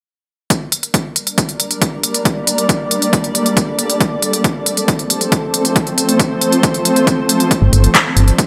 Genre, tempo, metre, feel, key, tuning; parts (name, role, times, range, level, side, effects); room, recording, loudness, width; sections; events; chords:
uplifting trance; 137 BPM; 4/4; straight; G minor; A4 = 440 Hz
shimmering ambient pad; sustained chords; 1.6-8.5 s; F3 to D5; -19 LUFS; equal; chorus, built-in reverb, sidechain pumping
big-room dance drum kit; drums; 0.5-8.5 s; handclaps, hi-hat; -18 LUFS; equal; overdrive
electronic kick drum; drums; 0.5-8.5 s; -18 LUFS; equal; overdrive, high-pass filter on kick, high-pass filter on room
solid FM bass; bass; 7.6-8.3 s; G1; -12 LUFS; equal; sidechain pumping
light reverb; -15 LUFS; mono
0.5-8.5 A section
0.5 Gm; 4.0 F; 7.5 Gm